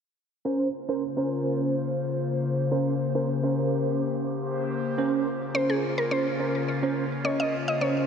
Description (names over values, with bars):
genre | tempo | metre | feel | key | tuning
pop | 106 BPM | 4/4 | straight | Bb dorian | A4 = 441 Hz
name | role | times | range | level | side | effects
mellow tine electric piano | accompaniment | 0.4-8.1 s | Db4 to Eb5 | -28 LUFS | right 3 dB | ensemble chorus
airy breathy pad | sustained chords | 0.8-8.1 s | Db3 to C5 | -28 LUFS | left 4 dB | chorus, phaser
mallet-like synth pluck | melody | 5.5-8.1 s | Ab4 to Eb5 | -28 LUFS | equal | chorus, ping-pong delay
room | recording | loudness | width
wet huge ambient reverb, RT60 7.2 s | dreamy mix soaked in reverb, low-pass filter | -24 LUFS | side -7 dB against mid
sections
0.5-5.0 A section; 5.0-8.1 B section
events
filter sweep 0.5-5.0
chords
0.5 Bbmadd9